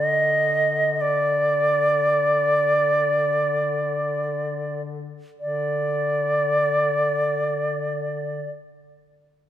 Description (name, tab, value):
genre	caucasian folk, Caucasian lament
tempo	free time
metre	none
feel	none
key	unclear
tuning	A4 = 440 Hz
part	bright bansuri	melody	0.0-8.5 s	D5 to Eb5	-20 LUFS	right 1 dB	none
part	mellow duduk	drone	0.0-8.5 s	D3	-30 LUFS	left 3 dB	none
room	light reverb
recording	minimal, uncompressed stereo recording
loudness	-20 LUFS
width	side -11 dB against mid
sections	0.0-5.4 A section; 5.4-9.5 B section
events	slowing down 0.0-5.4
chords	none